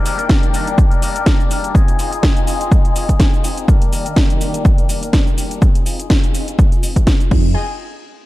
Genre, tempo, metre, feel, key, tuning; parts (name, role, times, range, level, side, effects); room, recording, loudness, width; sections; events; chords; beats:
filtered disco house; 124 BPM; 4/4; swing 55% on 16ths; F dorian; A4 = 440 Hz
clear symphonic string section; sustained chords; 0.0-7.5 s; Eb3 to Ab5; -26 LUFS; left 2 dB; sidechain pumping, low-pass filter
electric guitar with an envelope filter; riff; 0.0-7.5 s; G3 to Bb4; -26 LUFS; left 6 dB; spring reverb, sidechain pumping, low-pass filter
house drum kit; drums; 0.1-7.4 s; crash cymbal, hi-hat, shaker, snare drum; -23 LUFS; equal; overdrive
electronic kick drum; drums; 0.3-7.4 s; -13 LUFS; equal; overdrive
mellow synth brass; accompaniment; 7.3-7.5 s; C4 to Ab4; -28 LUFS; right 5 dB; chorus, phaser, sidechain pumping, low-pass filter
vintage muted fingered electric bass; bass; 7.3-7.5 s; F2; -18 LUFS; equal; sidechain pumping, low-pass filter
digital ambience; dark, warm production; -12 LUFS; side -17 dB against mid
0.0-7.6 A section
filter sweep 0.0-7.6
0.0 Ebmaj7; 1.7 Fm7; 3.7 Ebmaj7; 5.6 Fm7; 7.6 N.C.
0.30 0.78 1.26 | 1.75 2.23 2.72 3.20 | 3.68 4.17 4.65 5.14 | 5.62 6.10 6.59 7.07